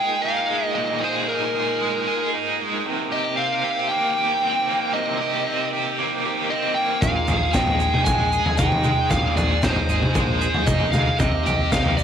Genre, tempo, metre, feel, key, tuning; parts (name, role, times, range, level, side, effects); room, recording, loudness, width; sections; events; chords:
psychedelic rock; 115 BPM; 4/4; straight; A4 = 440 Hz
fuzz lead guitar; melody; 0.0-12.0 s; Bb4 to Ab5; -24 LUFS; equal; distortion, tape echo
percussive tonewheel organ; sustained chords; 0.0-12.0 s; G3 to G5; -34 LUFS; right 9 dB; slow rotary speaker, chorus vibrato
cranked stack guitar; riff; 0.0-12.0 s; Bb2 to Ab4; -23 LUFS; right 1 dB; overdrive, tremolo
growling picked electric bass; bass; 7.0-12.0 s; F1 to Eb2; -26 LUFS; left 1 dB; overdrive
crunchy breakbeat drum kit; drums; 7.0-12.0 s; kick drum, snare drum, toms; -21 LUFS; left 1 dB
egg shaker; percussion; 7.0-12.0 s; -40 LUFS; right 16 dB
moderate echo chamber reverb, RT60 1.7 s, small room ambience; 1960s-style stereo; -19 LUFS; side -8 dB against mid
0.0-12.0 A section
0.0 Bb7sus4; 2.9 Cm7; 7.0 Bb7sus4; 11.2 Cm7